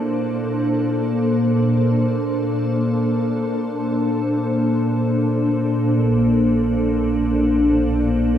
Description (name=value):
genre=ambient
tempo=free time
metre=none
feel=none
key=unclear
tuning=A4 = 441 Hz
part: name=glassy FM pad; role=sustained chords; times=0.0-8.4 s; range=Bb2 to C5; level=-17 LUFS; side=equal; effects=ensemble chorus, built-in reverb
part: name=dark studio double bass section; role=bass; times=6.0-8.4 s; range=Bb1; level=-25 LUFS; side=equal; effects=none
room=wet huge ambient reverb, RT60 7.6 s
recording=cassette tape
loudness=-17 LUFS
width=side -10 dB against mid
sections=0.0-6.0 A section; 6.0-8.4 B section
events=none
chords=0.0 Am/Bb